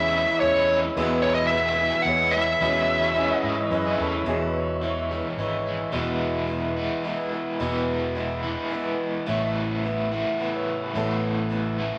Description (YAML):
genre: folk rock and heartland rock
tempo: 108 BPM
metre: 3/4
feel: straight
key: E major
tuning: A4 = 440 Hz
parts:
  - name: smooth overdriven lead guitar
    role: melody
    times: 0.0-3.9 s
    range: C#5 to F#5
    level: -24 LUFS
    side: equal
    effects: none
  - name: picked swing-style acoustic guitar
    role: accompaniment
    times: 0.0-12.0 s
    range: E2 to E4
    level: -31 LUFS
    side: equal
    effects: none
  - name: warm concert grand piano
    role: accompaniment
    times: 0.0-4.3 s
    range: B3 to C#5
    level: -33 LUFS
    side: equal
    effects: none
  - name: mellow tonewheel organ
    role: sustained chords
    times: 0.0-5.9 s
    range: B4 to E6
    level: -36 LUFS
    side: equal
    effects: slow rotary speaker
  - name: crunchy overdriven guitar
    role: riff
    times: 0.0-12.0 s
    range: E2 to E4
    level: -31 LUFS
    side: equal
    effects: tremolo
  - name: fingered electric bass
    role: bass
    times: 0.0-11.9 s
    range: E1 to G#2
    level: -35 LUFS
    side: equal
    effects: none
  - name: bright upright piano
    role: second line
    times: 3.2-5.8, 9.3-12.0 s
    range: E4 to G#5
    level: -37 LUFS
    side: equal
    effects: none
room: wet large studio reverb, RT60 1.2 s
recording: none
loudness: -25 LUFS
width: mono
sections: 0.0-4.3 A section; 4.3-5.9 B section; 5.9-12.0 C section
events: none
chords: 0.0 C#m7/E; 5.9 E; 9.3 Asus2